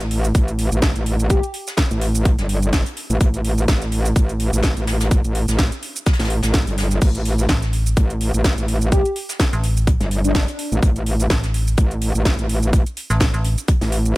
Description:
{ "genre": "bass house", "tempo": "126 BPM", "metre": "4/4", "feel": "swing 56% on 16ths", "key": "unclear", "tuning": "A4 = 440 Hz", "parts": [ { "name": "metallic wobble bass", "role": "bass", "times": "0.0-14.1 s", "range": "G1 to A1", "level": "-19 LUFS", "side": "equal", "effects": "chorus, tube saturation, sidechain pumping" }, { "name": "house drum kit", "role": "drums", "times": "0.0-14.1 s", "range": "crash cymbal, hi-hat, shaker, snare drum", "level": "-25 LUFS", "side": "right 1 dB", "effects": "none" }, { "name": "soft brush drum kit", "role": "drums", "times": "0.0-14.0 s", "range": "hi-hat, snare drum", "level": "-32 LUFS", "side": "left 2 dB", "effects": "high-pass filter on hats, high-pass filter on snare, high-pass filter on room" }, { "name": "electronic kick drum", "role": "drums", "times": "0.3-13.8 s", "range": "none", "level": "-17 LUFS", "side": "equal", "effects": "none" }, { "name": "airy dreamy lead", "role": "melody", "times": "1.3-1.4, 8.9-10.6 s", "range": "D4 to G4", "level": "-24 LUFS", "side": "left 2 dB", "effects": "chorus, dub echo" }, { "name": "metallic FM bass", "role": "bass", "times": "7.5-13.6 s", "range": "A1", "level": "-19 LUFS", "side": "equal", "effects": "overdrive, sidechain pumping" } ], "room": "digital ambience", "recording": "none", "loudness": "-16 LUFS", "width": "side -20 dB against mid", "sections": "0.0-14.2 A section", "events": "none", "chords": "none" }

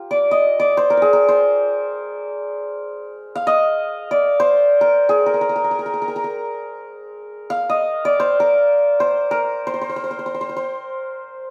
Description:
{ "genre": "indian classical", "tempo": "free time", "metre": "none", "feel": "none", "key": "unclear", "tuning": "A4 = 440 Hz", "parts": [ { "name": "santur", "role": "solo", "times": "0.0-11.5 s", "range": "F4 to F5", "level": "-19 LUFS", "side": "equal", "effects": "none" } ], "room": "wet studio reverb, RT60 0.8 s", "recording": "band playing live in one room", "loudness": "-18 LUFS", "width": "mono", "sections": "0.0-11.5 A section", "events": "none", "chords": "none" }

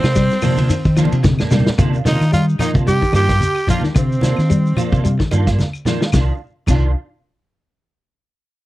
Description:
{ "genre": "afrobeat", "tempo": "110 BPM", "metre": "4/4", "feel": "swing 56% on 16ths", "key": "C minor", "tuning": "A4 = 440 Hz", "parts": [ { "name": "raspy tenor saxophone", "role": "melody", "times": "0.0-5.0 s", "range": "C4 to G4", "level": "-23 LUFS", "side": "equal", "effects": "tape echo" }, { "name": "raspy alto saxophone", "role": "second line", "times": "0.0-5.0 s", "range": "C4 to C5", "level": "-25 LUFS", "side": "right 4 dB", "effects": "none" }, { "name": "semi-hollow electric guitar", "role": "arpeggios", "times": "0.0-6.8 s", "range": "C3 to G3", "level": "-21 LUFS", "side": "left 4 dB", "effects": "none" }, { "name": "semi-hollow electric guitar", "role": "stabs", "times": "0.0-6.9 s", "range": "Eb3 to F4", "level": "-24 LUFS", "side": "right 4 dB", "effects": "ensemble chorus" }, { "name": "fingered electric bass", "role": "bass", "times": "0.0-6.9 s", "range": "C2 to Eb3", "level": "-16 LUFS", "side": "equal", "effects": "none" }, { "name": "warm soul drum kit", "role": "drums", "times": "0.0-6.8 s", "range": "crash cymbal, hi-hat, kick drum, ride cymbal, snare drum", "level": "-20 LUFS", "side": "equal", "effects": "none" }, { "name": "claves", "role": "percussion", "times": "0.0-6.8 s", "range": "none", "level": "-34 LUFS", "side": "left 6 dB", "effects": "none" }, { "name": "shekere", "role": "percussion", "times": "0.0-6.8 s", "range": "none", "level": "-23 LUFS", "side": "equal", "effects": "none" }, { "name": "congas", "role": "percussion", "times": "0.2-6.8 s", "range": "none", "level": "-22 LUFS", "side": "right 1 dB", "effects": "none" } ], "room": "little or no reverb", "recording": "dry, close 1970s-style studio recording", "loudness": "-14 LUFS", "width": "side -16 dB against mid", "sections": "0.0-1.8 A section; 1.8-6.1 B section; 6.1-8.3 C section", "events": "drum fill 1.0-1.8, 5.6-6.1", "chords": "0.0 Cm11; 6.1 Cmadd9" }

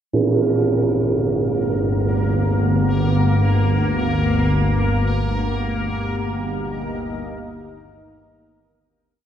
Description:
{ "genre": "dark ambient drone", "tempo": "free time", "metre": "none", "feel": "none", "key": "G minor", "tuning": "A4 = 445 Hz", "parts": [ { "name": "organ-like drone", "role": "drone", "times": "1.0-9.1 s", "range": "G1 to D2", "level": "-19 LUFS", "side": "equal", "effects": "ensemble chorus, built-in reverb" }, { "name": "tam-tam", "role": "percussion", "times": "0.1-0.4 s", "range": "none", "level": "-21 LUFS", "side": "right 2 dB", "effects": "low-pass filter on cymbals" }, { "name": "bubbling stepped-filter texture", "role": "texture", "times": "0.1-9.0 s", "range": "Bb3 to Bb4", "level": "-28 LUFS", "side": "equal", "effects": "chorus, built-in reverb, shimmer reverb" }, { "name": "deep dark ambient pad", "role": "sustained chords", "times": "5.4-9.0 s", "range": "G2 to Eb5", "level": "-30 LUFS", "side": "equal", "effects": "chorus, built-in reverb" } ], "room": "wet cathedral reverb, RT60 6.3 s", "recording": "nothing above 10.8 kHz", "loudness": "-17 LUFS", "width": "side -9 dB against mid", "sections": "0.1-9.0 A section", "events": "fade-in on synth texture 0.1-9.0; fade-out 4.5-9.0", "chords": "0.1 Gm; 4.5 Eb/G" }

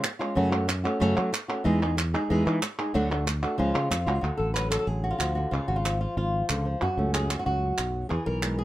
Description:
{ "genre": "flamenco", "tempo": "186 BPM", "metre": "4/4", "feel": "straight", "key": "unclear", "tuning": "A4 = 440 Hz", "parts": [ { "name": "flamenco guitar", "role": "melody", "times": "0.0-8.6 s", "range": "F#2 to B4", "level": "-27 LUFS", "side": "equal", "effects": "none" }, { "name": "palmas hand claps", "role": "percussion", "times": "0.0-8.6 s", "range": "none", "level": "-31 LUFS", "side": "right 2 dB", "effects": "none" }, { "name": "sustaining fretless electric bass", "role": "bass", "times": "0.4-8.6 s", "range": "G#1 to F#3", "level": "-28 LUFS", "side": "equal", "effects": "none" } ], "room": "little or no reverb", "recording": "close, detailed microphones", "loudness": "-24 LUFS", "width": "side -14 dB against mid", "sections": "0.0-4.2 A section; 4.2-8.6 B section", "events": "none", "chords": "0.4 F#m; 1.7 Emaj7; 2.9 D; 3.6 C#; 4.2 D; 5.5 C#; 6.8 F#m; 8.1 E" }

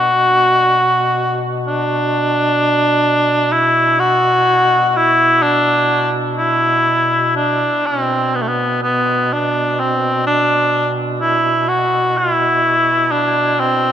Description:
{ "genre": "caucasian folk, Caucasian lament", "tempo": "63 BPM", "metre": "3/4", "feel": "rubato", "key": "B phrygian", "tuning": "A4 = 439 Hz", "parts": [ { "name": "warm cor anglais", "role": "melody", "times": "0.0-13.9 s", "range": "A3 to F#4", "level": "-13 LUFS", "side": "equal", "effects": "none" }, { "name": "mellow duduk", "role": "drone", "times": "0.0-13.9 s", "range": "B2", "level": "-23 LUFS", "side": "equal", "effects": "none" } ], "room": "moderate cathedral reverb, RT60 6.6 s", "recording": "minimal, uncompressed stereo recording", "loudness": "-13 LUFS", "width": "side -9 dB against mid", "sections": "0.0-13.9 A section", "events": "none", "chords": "none" }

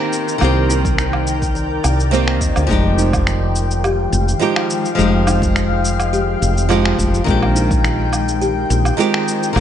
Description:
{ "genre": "sunset chillout", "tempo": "105 BPM", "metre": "4/4", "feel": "straight", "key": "F dorian", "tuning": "A4 = 439 Hz", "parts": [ { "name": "nylon-string guitar", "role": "accompaniment", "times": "0.0-9.6 s", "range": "Eb3 to G4", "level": "-20 LUFS", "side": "moving between left 3 dB and right 6 dB", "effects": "auto-pan, tape echo" }, { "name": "shimmering ambient pad", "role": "sustained chords", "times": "0.0-9.6 s", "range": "Eb3 to G5", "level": "-22 LUFS", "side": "left 3 dB", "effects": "chorus, built-in reverb" }, { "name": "kalimba", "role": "arpeggios", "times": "0.0-9.3 s", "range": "Eb4 to G5", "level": "-25 LUFS", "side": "equal", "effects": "tape echo" }, { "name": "electronic shaker, woodblock and finger snaps", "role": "drums", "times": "0.1-9.6 s", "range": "none", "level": "-24 LUFS", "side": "right 1 dB", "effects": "overdrive, studio reverb" }, { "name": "woody fretless electric bass", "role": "bass", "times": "0.4-9.6 s", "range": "F1 to Eb2", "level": "-18 LUFS", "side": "equal", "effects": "analog chorus" }, { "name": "electronic kick drum", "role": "drums", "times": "0.8-7.8 s", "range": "none", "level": "-21 LUFS", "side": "equal", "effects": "overdrive, studio reverb" } ], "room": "light reverb, digital ambience", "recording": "nothing above 10.5 kHz", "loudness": "-14 LUFS", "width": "side -10 dB against mid", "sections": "0.0-9.6 A section", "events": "none", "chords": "0.0 Cm7; 2.7 Fm9; 7.3 Bb13sus4" }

